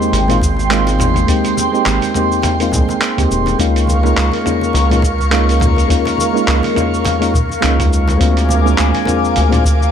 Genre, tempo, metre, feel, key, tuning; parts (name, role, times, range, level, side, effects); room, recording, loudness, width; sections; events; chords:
sunset chillout; 104 BPM; 4/4; swing 57% on 16ths; A4 = 440 Hz
soft electric-piano-like synth keys; accompaniment; 0.0-9.6 s; Ab3 to Ab4; -17 LUFS; moving between left 5 dB and right 6 dB; chorus, auto-pan, tape echo
airy breathy pad; sustained chords; 0.0-9.9 s; Ab3 to D6; -19 LUFS; right 1 dB; chorus, phaser, vintage 12-bit sampler grit
dusty soul sampler-style drum kit; drums; 0.0-9.9 s; cabasa, handclaps, hi-hat, toms; -20 LUFS; equal
round analog bass; bass; 0.1-9.9 s; Eb1 to D2; -15 LUFS; equal
congas; percussion; 0.1-9.9 s; -26 LUFS; left 1 dB
electronic kick drum; drums; 0.4-9.8 s; -18 LUFS; equal
light reverb; -12 LUFS; side -8 dB against mid
0.0-9.9 A section
0.0 Abmaj7; 3.6 Db69; 8.2 Bb7/D